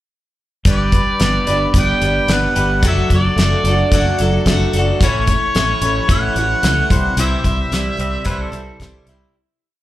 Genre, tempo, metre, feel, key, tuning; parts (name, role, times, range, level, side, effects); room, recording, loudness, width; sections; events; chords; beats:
folk rock and heartland rock; 110 BPM; 4/4; straight; A4 = 440 Hz
warm harmonica; melody; 0.7-8.8 s; C#5 to G5; -20 LUFS; equal; slapback echo
picked twelve-string acoustic guitar; accompaniment; 0.7-9.4 s; A2 to C#5; -22 LUFS; left 4 dB; slapback echo
electric guitar through a small old amp; riff; 0.7-9.4 s; G2 to G4; -22 LUFS; right 2 dB; slapback echo
fingered electric bass; bass; 0.7-9.2 s; F#1 to C#2; -18 LUFS; equal
damped 70s drum kit; drums; 0.7-9.2 s; hi-hat, kick drum, snare drum; -17 LUFS; equal
pedal steel guitar; second line; 8.0-9.3 s; E4 to E5; -30 LUFS; right 2 dB; slapback echo
small room ambience; live gig heard through the venue's PA, club reverb; -13 LUFS; side -15 dB against mid
0.7-9.3 verse
fade-out 7.2-9.3
0.7 G; 2.8 D/F#; 5.0 A; 6.9 C
| 0.66 1.20 1.74 2.29 | 2.83 3.37 3.92 4.46 | 5.01 5.55 6.09 6.64 | 7.18 7.72 8.27 8.81